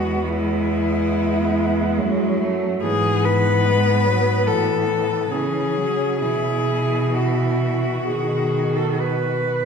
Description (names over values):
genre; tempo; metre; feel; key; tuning
classical, lyrical piece for cello ensemble; 62-75 BPM; 4/4; rubato; E major; A4 = 441 Hz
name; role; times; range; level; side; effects
rich cello; melody; 0.0-9.5 s; E4 to B4; -22 LUFS; left 5 dB; none
rich cello; second line; 0.0-9.7 s; G#3 to B4; -25 LUFS; right 4 dB; none
rich cello; accompaniment; 0.0-9.7 s; D#3 to G#3; -25 LUFS; right 1 dB; none
rich cello; bass; 0.0-9.7 s; E2 to C#3; -24 LUFS; right 1 dB; none
room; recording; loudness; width
wet recital hall reverb, RT60 1.4 s; heard from further back in the room; -18 LUFS; side -6 dB against mid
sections
0.0-9.7 A section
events
none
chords
0.0 E; 2.8 E/G#; 4.5 A; 6.2 Bsus4; 8.1 B